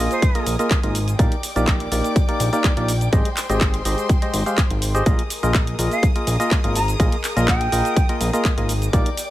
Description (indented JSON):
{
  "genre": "piano house",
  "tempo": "124 BPM",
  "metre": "4/4",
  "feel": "straight",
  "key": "Bb mixolydian",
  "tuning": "A4 = 440 Hz",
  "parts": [
    { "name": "rich studio violin section", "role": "sustained chords", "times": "0.0-9.3 s", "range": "Ab4 to Eb6", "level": "-31 LUFS", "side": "left 2 dB", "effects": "sidechain pumping" },
    { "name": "percussive organ stab", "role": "riff", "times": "0.0-9.1 s", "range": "Ab3 to F5", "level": "-24 LUFS", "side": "equal", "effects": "chorus, sidechain pumping, dub echo" },
    { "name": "fat analog bass", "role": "bass", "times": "0.0-9.0 s", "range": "Ab1 to Bb1", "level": "-22 LUFS", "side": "equal", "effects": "sidechain pumping" },
    { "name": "jazz flute", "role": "melody", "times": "0.1-0.5, 5.9-8.2 s", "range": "C5 to Bb5", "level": "-27 LUFS", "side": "right 1 dB", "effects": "dub echo" },
    { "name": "garage drum kit", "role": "drums", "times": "0.1-9.3 s", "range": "cabasa, handclaps, hi-hat", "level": "-26 LUFS", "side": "equal", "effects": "small room ambience" },
    { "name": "electronic kick drum", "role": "drums", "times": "0.2-9.0 s", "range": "none", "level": "-18 LUFS", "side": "equal", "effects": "small room ambience" }
  ],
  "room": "light reverb",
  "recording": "none",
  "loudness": "-17 LUFS",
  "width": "side -14 dB against mid",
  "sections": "0.0-9.3 A section",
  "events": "none",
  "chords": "0.0 Bb7sus4; 1.2 Ebmaj7/Bb; 3.1 Abmaj7; 5.1 Bb7sus4",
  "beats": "0.22 0.71 | 1.19 1.68 2.16 2.64 | 3.13 3.61 4.09 4.58 | 5.06 5.55 6.03 6.51 | 7.00 7.48 7.96 8.45 | 8.93"
}